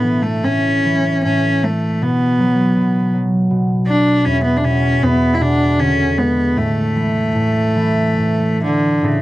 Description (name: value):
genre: celtic folk, Celtic slow air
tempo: 69-82 BPM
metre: 3/4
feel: rubato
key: A major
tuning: A4 = 441 Hz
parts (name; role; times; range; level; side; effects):
- clear cello; melody; 0.0-9.2 s; C#3 to E4; -16 LUFS; equal; none
- concert harp; accompaniment; 0.0-9.2 s; E2 to F#4; -17 LUFS; equal; none
room: light reverb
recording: dry, close 1970s-style studio recording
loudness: -14 LUFS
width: side -16 dB against mid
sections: 0.0-9.0 A section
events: none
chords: 0.0 A; 2.0 B5; 4.3 E5; 5.0 E7; 6.6 A5